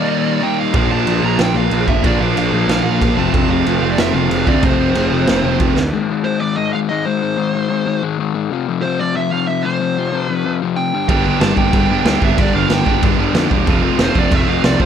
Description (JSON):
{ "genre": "punk rock", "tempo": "186 BPM", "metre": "4/4", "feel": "straight", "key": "unclear", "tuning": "A4 = 441 Hz", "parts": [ { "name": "dark smooth lead guitar", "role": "melody", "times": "0.0-14.9 s", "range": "C5 to Bb5", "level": "-22 LUFS", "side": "right 2 dB", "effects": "overdrive, digital delay" }, { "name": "crunchy overdriven guitar", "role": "riff", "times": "0.0-14.9 s", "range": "F2 to Eb4", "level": "-19 LUFS", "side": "left 10 dB", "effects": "none" }, { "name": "fuzz guitar", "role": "riff", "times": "0.0-5.8, 11.1-14.9 s", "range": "F2 to Eb4", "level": "-22 LUFS", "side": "right 2 dB", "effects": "distortion" }, { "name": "tight distorted guitar", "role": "riff", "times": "0.0-5.8, 11.1-14.9 s", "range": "F2 to G4", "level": "-21 LUFS", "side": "right 18 dB", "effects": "distortion" }, { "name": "fuzz picked electric bass", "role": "bass", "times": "0.7-5.9, 11.1-14.9 s", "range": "E1 to G2", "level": "-20 LUFS", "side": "right 1 dB", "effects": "overdrive" }, { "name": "raw garage drum kit", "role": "drums", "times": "0.7-5.8, 11.1-14.9 s", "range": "crash cymbal, kick drum, snare drum", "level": "-18 LUFS", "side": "right 1 dB", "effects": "none" } ], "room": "little or no reverb", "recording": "none", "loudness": "-14 LUFS", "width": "side -8 dB against mid", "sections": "0.0-5.9 A section; 5.9-14.9 B section", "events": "half time 0.0-5.9; drum fill 5.8", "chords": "0.0 Eb; 0.7 Bb; 3.2 F; 5.9 Ab; 8.5 F5; 10.9 G; 13.7 F", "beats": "0.09 0.42 | 0.74 1.07 1.39 1.72 | 2.04 2.37 2.69 3.01 | 3.34 3.66 3.98 4.31 | 4.63 4.96 5.28 5.60 | 5.93 6.25 6.57 6.89 | 7.22 7.54 7.86 8.19 | 8.51 8.83 9.16 9.48 | 9.80 10.12 10.45 10.77 | 11.09 11.41 11.74 12.06 | 12.38 12.71 13.03 13.35 | 13.67 13.99 14.32 14.64" }